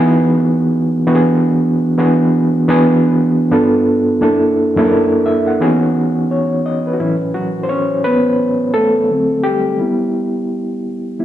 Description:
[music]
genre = R&B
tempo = 86 BPM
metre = 4/4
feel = swing 62% on 16ths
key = E major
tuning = A4 = 440 Hz
[part]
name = overdriven reed electric piano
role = solo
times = 0.0-11.2 s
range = F#2 to F#5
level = -12 LUFS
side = equal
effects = fast tremolo
[sound]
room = wet stone room reverb, RT60 1.2 s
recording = band playing live in one room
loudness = -12 LUFS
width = side -12 dB against mid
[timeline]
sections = 0.0-7.0 A section; 7.0-11.2 B section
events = reed electric piano solo 7.0-11.2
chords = 0.0 Emaj9; 1.1 E9; 3.5 G9; 4.2 F#7alt; 5.6 Emaj13; 7.0 A6; 9.1 D7; 9.8 G6

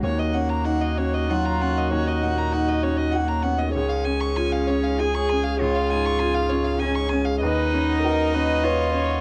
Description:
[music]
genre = neoclassical piano and strings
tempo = 98 BPM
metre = 3/4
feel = rubato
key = Eb minor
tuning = A4 = 440 Hz
[part]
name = warm violin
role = melody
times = 0.0-9.2 s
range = Db5 to Db6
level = -30 LUFS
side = equal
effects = cassette tape
[part]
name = dark cello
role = second line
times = 0.0-9.2 s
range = Bb3 to Ab4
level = -30 LUFS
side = equal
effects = cassette tape
[part]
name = dark viola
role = accompaniment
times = 0.0-9.2 s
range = Gb4 to C#5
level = -30 LUFS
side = equal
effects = cassette tape
[part]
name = warm baby grand piano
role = accompaniment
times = 0.0-9.2 s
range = Db2 to B4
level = -29 LUFS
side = equal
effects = cassette tape
[part]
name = marimba with soft mallets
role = arpeggios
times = 0.0-9.2 s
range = Db4 to B5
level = -34 LUFS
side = equal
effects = cassette tape
[part]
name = punchy sub bass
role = bass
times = 0.0-9.2 s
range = Db2 to Eb2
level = -29 LUFS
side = equal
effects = none
[sound]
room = little or no reverb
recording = home recording on cassette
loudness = -23 LUFS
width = mono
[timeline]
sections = 0.0-9.2 A section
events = none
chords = 0.0 Ebm7; 3.7 Db; 7.4 Badd9/D#

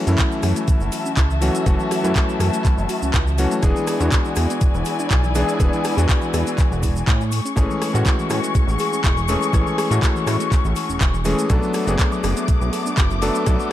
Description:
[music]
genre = nu-disco, nu disco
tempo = 122 BPM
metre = 4/4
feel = swing 54% on 16ths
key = F# minor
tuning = A4 = 440 Hz
[part]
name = clear electric grand piano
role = accompaniment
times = 0.0-13.7 s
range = E3 to A4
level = -23 LUFS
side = left 2 dB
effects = ping-pong delay
[part]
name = muted studio string section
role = sustained chords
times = 0.0-13.7 s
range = A3 to D6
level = -27 LUFS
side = left 4 dB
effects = sidechain pumping
[part]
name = soft round pluck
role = arpeggios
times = 0.1-13.7 s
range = E3 to A4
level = -30 LUFS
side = right 2 dB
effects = chorus, sidechain pumping, ping-pong delay
[part]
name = chorused synth bass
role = bass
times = 0.1-13.6 s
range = E1 to A2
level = -21 LUFS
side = equal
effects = sidechain pumping
[part]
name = house drum kit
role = drums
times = 0.1-13.7 s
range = handclaps, hi-hat, rim click, shaker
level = -27 LUFS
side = equal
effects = overdrive
[part]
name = cabasa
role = percussion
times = 0.1-13.7 s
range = none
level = -38 LUFS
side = right 12 dB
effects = none
[part]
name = electronic kick drum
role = drums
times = 0.2-13.6 s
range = none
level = -18 LUFS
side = equal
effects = none
[sound]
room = light reverb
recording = dark, warm production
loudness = -17 LUFS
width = side -13 dB against mid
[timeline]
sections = 0.0-13.7 A section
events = none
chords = 0.0 F#m7; 3.6 E7; 7.3 Amaj7; 11.5 Bm7

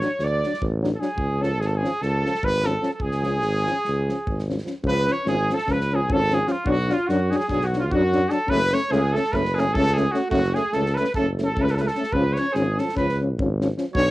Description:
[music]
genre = balkan folk, Balkan brass band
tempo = 296 BPM (eighths)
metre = 9/8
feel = straight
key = C# phrygian dominant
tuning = A4 = 440 Hz
[part]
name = clear trumpet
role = melody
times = 0.0-14.1 s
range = E#4 to D5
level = -26 LUFS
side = equal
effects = cassette tape
[part]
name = warm trumpet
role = second line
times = 0.0-14.1 s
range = E#4 to D5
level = -27 LUFS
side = right 2 dB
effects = cassette tape
[part]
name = mellow euphonium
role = accompaniment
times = 0.0-14.1 s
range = C#4 to D4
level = -26 LUFS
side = left 3 dB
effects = cassette tape
[part]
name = warm euphonium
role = accompaniment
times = 0.0-14.0 s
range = E#3 to A3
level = -31 LUFS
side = right 4 dB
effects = cassette tape
[part]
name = loose indie drum kit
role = percussion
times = 0.0-14.1 s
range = kick drum, snare drum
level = -33 LUFS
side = equal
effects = cassette tape
[part]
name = mellow tuba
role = bass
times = 0.2-14.1 s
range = F#1 to F#2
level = -24 LUFS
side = equal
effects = none
[sound]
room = light reverb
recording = home recording on cassette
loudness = -20 LUFS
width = side -17 dB against mid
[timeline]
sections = 0.0-4.8 A section; 4.8-14.1 B section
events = none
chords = 0.0 D; 1.2 C#; 6.7 Bm; 8.5 F#m; 12.1 C#

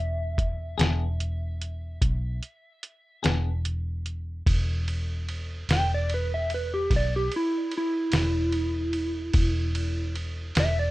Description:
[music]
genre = slow blues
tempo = 49 BPM (dotted quarters)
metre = 12/8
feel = straight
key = unclear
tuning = A4 = 439 Hz
[part]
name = electric slide guitar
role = melody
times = 0.0-10.9 s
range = E4 to G5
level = -29 LUFS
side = right 1 dB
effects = none
[part]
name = vintage muted fingered electric bass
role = bass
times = 0.0-10.9 s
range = E1 to B1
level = -28 LUFS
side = equal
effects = none
[part]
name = lo-fi sampler-style drum kit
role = drums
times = 0.4-10.8 s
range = hi-hat, kick drum, ride cymbal, snare drum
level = -28 LUFS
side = equal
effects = none
[part]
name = clean electric guitar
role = accompaniment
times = 0.8-3.5 s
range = E3 to G#4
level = -30 LUFS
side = left 6 dB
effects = tremolo
[sound]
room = little or no reverb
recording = rough home demo mix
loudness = -25 LUFS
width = side -18 dB against mid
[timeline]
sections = 0.0-4.5 A section; 4.5-10.9 B section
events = electric slide guitar solo 4.5-10.9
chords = 0.0 E5

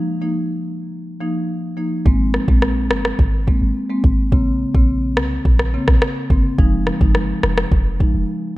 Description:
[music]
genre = dancehall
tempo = 106 BPM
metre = 4/4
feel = straight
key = Ab major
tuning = A4 = 439 Hz
[part]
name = marimba with medium mallets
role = accompaniment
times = 0.0-8.2 s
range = Db3 to Eb4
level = -21 LUFS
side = equal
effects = none
[part]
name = clean 808-style bass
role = bass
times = 2.1-8.3 s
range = F1 to C2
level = -19 LUFS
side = equal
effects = none
[part]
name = afro-pop drum kit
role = drums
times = 2.1-8.1 s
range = kick drum, rim click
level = -17 LUFS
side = equal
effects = none
[sound]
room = light reverb, digital ambience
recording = rough home demo mix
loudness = -15 LUFS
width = side -18 dB against mid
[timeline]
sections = 0.0-8.6 A section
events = none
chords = 0.0 Ebsus2; 2.1 Abadd9; 4.3 Bbmadd9; 6.6 Fm7

